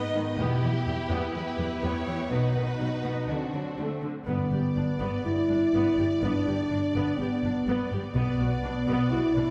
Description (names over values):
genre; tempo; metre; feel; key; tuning
cinematic; 124 BPM; 4/4; straight; G major from 4.3 s; A4 = 440 Hz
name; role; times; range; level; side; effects
rich symphonic violin section; melody; 0.0-9.5 s; F#4 to D#5; -41 LUFS; equal; none
warm symphonic violin section; second line; 0.0-9.5 s; D4 to D5; -40 LUFS; equal; none
warm symphonic viola section; accompaniment; 0.0-9.4 s; D3 to G4; -37 LUFS; equal; none
mellow French horn section; sustained chords; 0.0-9.5 s; B3 to E4; -31 LUFS; equal; none
rich symphonic cello section; bass; 0.1-9.4 s; E2 to D3; -36 LUFS; equal; none
rich symphonic double bass section; bass; 0.4-9.4 s; E1 to D2; -34 LUFS; equal; none
timpani; percussion; 4.3-5.0 s; G2; -35 LUFS; equal; none
room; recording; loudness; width
wet scoring stage reverb, RT60 1.9 s; heard from further back in the room; -27 LUFS; mono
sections
0.0-4.3 A section; 4.3-9.5 B section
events
none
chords
0.4 Em; 2.3 B; 3.3 D7; 4.3 G; 8.1 Bm